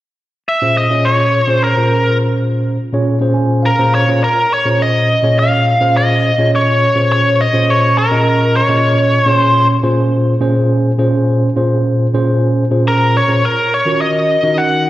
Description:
blues; 104 BPM; 4/4; swing 55% on 16ths; Bb minor; A4 = 441 Hz
biting lead guitar; melody; 0.5-14.9 s; Bb4 to Gb5; -13 LUFS; equal; overdrive, slapback echo
tine electric piano; accompaniment; 0.6-14.9 s; Bb2 to Ab5; -13 LUFS; equal; medium stereo tremolo
moderate lush hall reverb, RT60 2.5 s; live gig heard through the venue's PA, recital hall reverb; -11 LUFS; side -15 dB against mid
0.0-4.2 A section; 4.2-14.9 B section
tine electric piano fill 3.1-4.2
0.0 Bbm7; 13.4 Ebm7

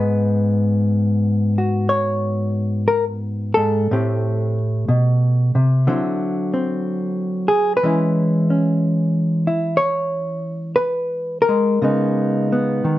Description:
solo jazz; 60 BPM; 4/4; swing 67% on 8ths, rubato; G# minor; A4 = 440 Hz
hollow-body jazz guitar; solo; 0.0-13.0 s; G#2 to C#5; -17 LUFS; equal
moderate club reverb, RT60 0.7 s; nothing above 7.8 kHz; -17 LUFS; side -14 dB against mid
0.0-13.0 A section
0.0 G#m7; 3.9 Am7; 5.9 D9; 7.8 E6; 11.8 C#7sus2

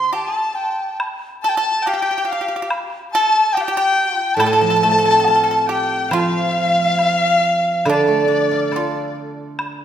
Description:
chinese traditional, Chinese chamber ensemble; 70 BPM; 2/4; rubato; A jue mode; A4 = 437 Hz
reedy large dizi; melody; 0.0-9.2 s; D5 to C6; -18 LUFS; left 1 dB
clear erhu; second line; 0.0-9.2 s; D5 to C6; -22 LUFS; left 4 dB
pipa; second line; 0.0-9.1 s; D4 to A4; -24 LUFS; right 4 dB
steel-string zither; accompaniment; 0.0-0.1, 4.4-9.8 s; A2 to A4; -20 LUFS; right 4 dB
woodblock; percussion; 0.1-9.8 s; -28 LUFS; equal
wet recital hall reverb, RT60 1.9 s; -15 LUFS; side -10 dB against mid
0.0-6.1 A section; 6.1-9.8 B section

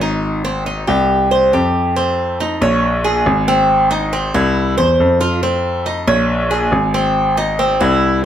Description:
latin, Cuban son and guajira; 139 BPM; 4/4; straight; F minor; A4 = 443 Hz
Cuban tres; arpeggios; 0.0-8.2 s; C4 to Db5; -15 LUFS; right 1 dB
clear grand piano; bass; 0.0-8.2 s; Ab1 to F2; -17 LUFS; left 2 dB
light reverb; -13 LUFS; side -10 dB against mid
0.0-2.0 A section; 2.0-8.2 B section
0.2 Abmaj7; 1.1 C5; 2.0 F5; 2.8 Bbm7; 3.7 Ab; 4.6 C; 5.4 F5; 6.3 Bbm7; 7.2 Ab

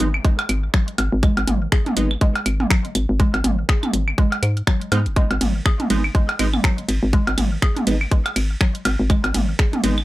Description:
minimal techno; 122 BPM; 4/4; swing 58% on 16ths; G# minor; A4 = 439 Hz
wavetable chord stab; stabs; 0.0-10.0 s; G#3 to D#4; -25 LUFS; right 3 dB; analog delay
hollow knocking FM bass; bass; 0.0-10.0 s; F#1 to G#2; -20 LUFS; equal; sidechain pumping
garage drum kit; drums; 0.0-9.9 s; finger snaps, hi-hat, ride cymbal; -26 LUFS; right 1 dB; overdrive, small room ambience
downlifter; sound effects; 0.0-1.2 s; -47 LUFS; equal
electronic claves, percussion blips and toms; percussion; 0.1-10.0 s; -24 LUFS; right 1 dB; small room ambience
hollow square pluck; riff; 0.2-9.6 s; F#3 to G#4; -28 LUFS; equal; chorus, sidechain pumping, tape echo
electronic kick drum; drums; 0.2-9.7 s; -17 LUFS; equal; overdrive, small room ambience
little or no reverb; dry, gritty hardware recording; -17 LUFS; side -17 dB against mid
0.0-10.0 A section
0.0 G#m

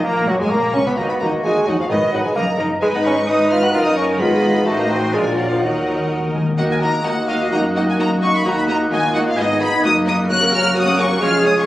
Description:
quick classical-period movement for symphony orchestra; 130 BPM; 2/4; straight; Eb minor; A4 = 440 Hz
clear chamber violin section; second line; 0.0-11.7 s; E#4 to Gb6; -26 LUFS; left 1 dB
mellow cor anglais; second line; 0.0-11.7 s; Gb3 to Eb5; -27 LUFS; right 1 dB
clear bassoon; accompaniment; 0.0-11.7 s; Eb3 to Gb4; -22 LUFS; right 1 dB
rich chamber viola section; accompaniment; 0.0-11.7 s; Gb3 to C5; -24 LUFS; right 1 dB
warm French horn section; sustained chords; 0.0-11.5 s; Gb3 to Cb5; -24 LUFS; left 1 dB
dark chamber cello section; bass; 0.0-11.7 s; Eb2 to Bb4; -25 LUFS; right 1 dB
rich chamber double bass section; bass; 0.0-11.7 s; E#1 to Gb2; -25 LUFS; equal
clear studio violin section; melody; 0.1-11.7 s; Ab3 to F#6; -22 LUFS; left 2 dB
silver concert flute; second line; 0.1-11.7 s; Db4 to G#6; -27 LUFS; left 1 dB
timpani; percussion; 5.6-6.6 s; Eb3; -24 LUFS; left 2 dB
wet scoring stage reverb, RT60 1.9 s; recorded on a phone in the room, club reverb, compression; -15 LUFS; side -15 dB against mid
0.0-6.6 A section; 6.6-11.7 A section
timpani fill 5.6-6.6
0.1 Abm11/Gb; 1.0 Ebm; 1.9 Abm; 2.4 Ebm/Gb; 2.8 Abm; 3.7 Ebm/Gb; 4.2 Fm7b5/Ab; 4.7 Adim7; 5.1 Bb7; 5.6 Ebm; 7.5 Ebm/Gb; 8.5 Ebm; 9.4 Abm; 9.8 Ebm/Gb; 10.3 F#

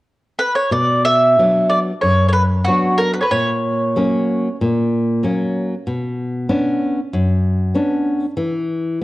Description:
fado-style ballad; 94 BPM; 4/4; rubato; B harmonic minor; A4 = 439 Hz
mandolin; melody; 0.4-4.6 s; F#4 to E5; -16 LUFS; right 1 dB
nylon-string guitar; accompaniment; 0.7-9.0 s; F#2 to D4; -17 LUFS; equal
moderate recital hall reverb, RT60 1.3 s; worn, warbling old tape, cassette tape, warbly pitch drift; -15 LUFS; side -18 dB against mid
0.7-9.0 A section
0.0 N.C.; 0.7 Bm; 3.3 F#/A#; 5.9 Bmadd9; 8.4 N.C.

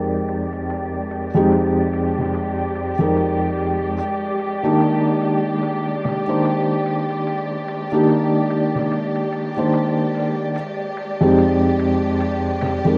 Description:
trip hop; 73 BPM; 4/4; swing 59% on 16ths; F dorian; A4 = 437 Hz
felt-muted upright piano; accompaniment; 0.0-13.0 s; F2 to C5; -21 LUFS; equal; tremolo, vintage 12-bit sampler grit
warm symphonic string section; sustained chords; 0.0-13.0 s; Ab3 to G4; -27 LUFS; equal; low-pass filter
wind-like tuned noise texture; texture; 0.0-13.0 s; D5; -32 LUFS; equal; built-in reverb
trip hop sampler-style drum kit; drums; 0.3-12.8 s; hi-hat, ride cymbal, snare drum; -38 LUFS; equal
light reverb, small room ambience; rough home demo mix; -20 LUFS; mono
0.0-13.0 A section
filter sweep on string section 0.0-13.0
0.0 Fm7; 4.0 Cm9/Eb; 10.6 Fm7

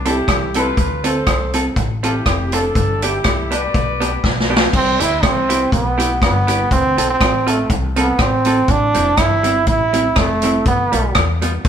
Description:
ska; 121 BPM; 4/4; swing 54% on 8ths; A4 = 439 Hz
warm horn section; melody; 0.0-4.5 s; D4 to D5; -22 LUFS; equal
upright bass; bass; 0.0-11.7 s; F1 to E2; -22 LUFS; left 1 dB
vintage hollow-body jazz guitar; accompaniment; 0.1-11.5 s; G3 to A4; -22 LUFS; right 1 dB
swinging big-band drum kit; drums; 0.1-11.7 s; crash cymbal, hi-hat, kick drum, rim click, snare drum; -18 LUFS; equal
brilliant trombone; melody; 4.8-11.1 s; A3 to E4; -17 LUFS; right 2 dB
wet stone room reverb, RT60 1.3 s; band playing live in one room; -14 LUFS; side -8 dB against mid
0.0-4.7 A section; 4.7-11.7 B section
drum fill 4.2-4.7; trombone solo 4.7-11.7
0.0 Fmaj7; 0.8 Dm7; 2.8 G; 6.7 Dm7 (rootless); 8.7 Am7; 10.7 G7

